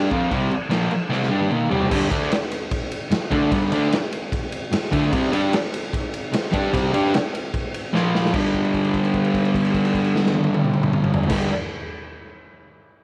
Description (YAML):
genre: garage rock duo or trio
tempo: 150 BPM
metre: 4/4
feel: straight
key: G minor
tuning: A4 = 439 Hz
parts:
  - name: fuzz guitar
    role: riff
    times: 0.0-11.5 s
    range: G2 to G4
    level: -22 LUFS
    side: equal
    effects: distortion
  - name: raw garage drum kit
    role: drums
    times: 0.1-11.4 s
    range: crash cymbal, kick drum, ride cymbal, snare drum, toms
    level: -27 LUFS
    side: equal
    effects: none
room: light reverb, small room ambience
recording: none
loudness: -21 LUFS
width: mono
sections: 0.0-1.9 A section; 1.9-8.3 B section; 8.3-11.5 C section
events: drum fill 1.1-1.9, 7.9-8.3; held note 8.3-11.3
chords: 0.1 C5; 1.9 G5; 5.1 C5; 7.9 Bb5; 8.3 G5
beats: | 0.32 0.71 1.11 1.51 | 1.92 2.31 2.71 3.12 | 3.52 3.92 4.32 4.72 | 5.12 5.52 5.92 6.32 | 6.72 7.13 7.53 7.93 | 8.33 8.73 9.14 9.54 | 9.94 10.34 10.74 11.14